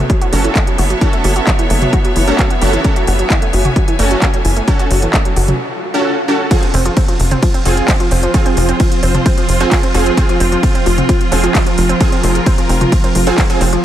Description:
driving peak-time techno; 131 BPM; 4/4; straight; A4 = 442 Hz
analog pluck; riff; 0.0-13.8 s; E3 to Gb4; -20 LUFS; equal; chorus, cassette tape, sidechain pumping, analog delay
tight sequencer bass; bass; 0.0-13.8 s; F1 to Gb1; -15 LUFS; equal; sidechain pumping
bright studio string section; texture; 0.0-13.8 s; B3 to Ab5; -21 LUFS; equal; sidechain pumping
electronic kick drum; drums; 0.1-13.5 s; -14 LUFS; equal; overdrive
techno drum kit; drums; 0.1-13.8 s; handclaps, hi-hat, ride cymbal, toms; -20 LUFS; equal; overdrive
rave stab; stabs; 0.3-13.6 s; C4 to A4; -20 LUFS; right 2 dB; chorus, built-in reverb, sidechain pumping, analog delay
swell; sound effects; 5.8-6.5 s; -29 LUFS; right 3 dB
deep dark ambient pad; drone; 7.6-13.8 s; F3 to F4; -21 LUFS; right 2 dB; chorus, built-in reverb, sidechain pumping
light reverb; -11 LUFS; side -11 dB against mid
0.0-6.5 A section; 6.5-13.8 B section
break 5.6-6.5; swell 5.8-6.5; drop 6.5-13.8
0.0 Gbm; 6.5 Fm

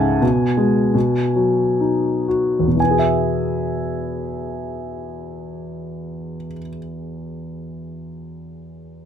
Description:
classical, lyrical solo piano; 54-89 BPM; 3/4; rubato; E major; A4 = 440 Hz
clear grand piano; solo; 0.0-9.1 s; C#2 to A5; -19 LUFS; left 1 dB
light reverb; close, detailed microphones; -17 LUFS; side -8 dB against mid
0.0-2.8 A section; 2.8-9.0 B section
slowing down 0.0-2.8
0.2 G#m/B; 1.0 B; 2.8 E

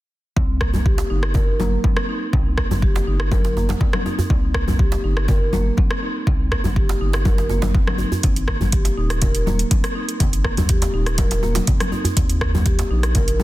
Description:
afro house; 122 BPM; 4/4; straight; C minor; A4 = 440 Hz
marimba with medium mallets; arpeggios; 0.4-13.4 s; Bb3 to Bb4; -26 LUFS; right 1 dB; sidechain pumping, ping-pong delay
round analog bass; bass; 0.4-13.4 s; Eb1 to Eb2; -22 LUFS; equal; sidechain pumping
electronic kick drum; drums; 0.4-13.3 s; -19 LUFS; equal; overdrive
congas; percussion; 0.4-13.4 s; -27 LUFS; left 2 dB
afro-pop drum kit; drums; 0.6-13.4 s; hi-hat, rim click; -27 LUFS; right 1 dB; overdrive
djembe; percussion; 0.7-13.4 s; -27 LUFS; right 2 dB
studio ambience; dense, heavily limited modern master; -17 LUFS; side -16 dB against mid
0.4-13.4 A section
0.4 Cm7; 8.2 Ab5; 12.2 Eb5

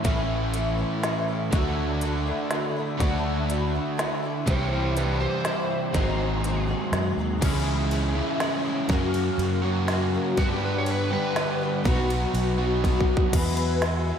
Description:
folk rock and heartland rock; 122 BPM; 3/4; straight; A4 = 441 Hz
picked twelve-string acoustic guitar; accompaniment; 0.0-14.2 s; E2 to G#4; -30 LUFS; left 3 dB; ensemble chorus, slapback echo
overdriven semi-hollow guitar; riff; 0.0-13.3 s; F#2 to G#4; -28 LUFS; right 1 dB
fingered electric bass; bass; 0.0-14.1 s; G#1 to G2; -27 LUFS; equal
organic electronic drum kit; drums; 0.0-13.9 s; crash cymbal, hi-hat, kick drum, ride cymbal, snare drum; -28 LUFS; equal; overdrive
overdriven slide guitar; second line; 4.5-6.6, 10.4-12.1 s; D4 to C#5; -31 LUFS; right 3 dB; slapback echo
pedal harmonium; sustained chords; 13.3-14.2 s; F#4 to G#5; -36 LUFS; right 1 dB
moderate lush hall reverb, RT60 2.2 s; big arena sound; -22 LUFS; side -8 dB against mid
0.0-7.4 A section; 7.4-13.3 B section
drum fill 12.8-13.3
0.0 A; 1.5 Dadd9; 4.5 C; 5.9 G#7; 7.4 C#m; 8.9 F#; 10.4 G; 11.9 B; 13.3 Eadd9

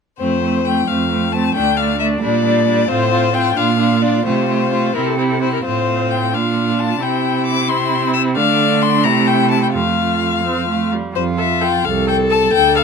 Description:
quick classical-period movement for string quartet; 88 BPM (dotted quarters); 6/8; straight; F major; A4 = 438 Hz
rich violin; melody; 0.2-12.8 s; G4 to E6; -18 LUFS; left 12 dB
rich violin; second line; 0.2-12.8 s; C4 to A4; -21 LUFS; left 3 dB
clear viola; accompaniment; 0.2-12.8 s; G3 to A4; -21 LUFS; right 4 dB
clear cello; bass; 0.2-12.8 s; C2 to D3; -19 LUFS; right 6 dB
light reverb; close, detailed microphones; -14 LUFS; side -5 dB against mid
0.2-11.2 A section; 11.2-12.8 A section
0.2 F; 1.6 D5; 2.2 Gm/Bb; 2.9 F/A; 3.6 Bb; 4.3 F/C; 5.0 C; 5.6 F/A; 6.3 Bb; 7.0 C; 8.4 Dm; 9.0 C; 9.7 F

